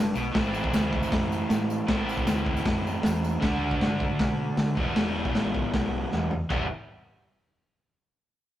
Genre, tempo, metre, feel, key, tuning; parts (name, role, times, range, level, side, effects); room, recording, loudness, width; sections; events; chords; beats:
garage rock duo or trio; 156 BPM; 4/4; straight; E minor; A4 = 437 Hz
crunchy overdriven guitar; riff; 0.0-6.7 s; E2 to F#4; -28 LUFS; equal
hollow-body short-scale fingered electric bass; bass; 0.0-6.7 s; E1 to D3; -33 LUFS; equal
tambourine; percussion; 0.2-3.3 s; -48 LUFS; right 3 dB
crunchy breakbeat drum kit; drums; 0.3-6.6 s; crash cymbal, hi-hat, kick drum, snare drum, toms; -27 LUFS; equal
light reverb; rough rehearsal-room recording, tube saturation; -24 LUFS; side -13 dB against mid
0.3-6.5 A section; 6.5-8.0 B section
drum fill 6.1-6.5
0.3 Am; 3.4 D; 4.8 Em
| 0.34 0.73 1.11 1.50 | 1.88 2.27 2.65 3.04 | 3.42 3.81 4.19 4.58 | 4.96 5.34 5.73 6.11 | 6.50